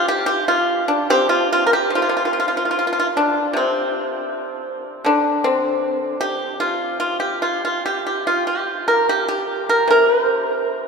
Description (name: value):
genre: chinese traditional, Chinese solo plucked strings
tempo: 70-80 BPM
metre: 2/4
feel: rubato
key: C shang mode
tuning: A4 = 440 Hz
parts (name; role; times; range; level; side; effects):
- pipa; solo; 0.0-10.9 s; C3 to C5; -17 LUFS; equal; none
room: wet cathedral reverb, RT60 5.6 s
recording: in a vast, echoing space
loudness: -17 LUFS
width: side -5 dB against mid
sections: 0.0-1.9 A section; 1.9-10.9 A section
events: none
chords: none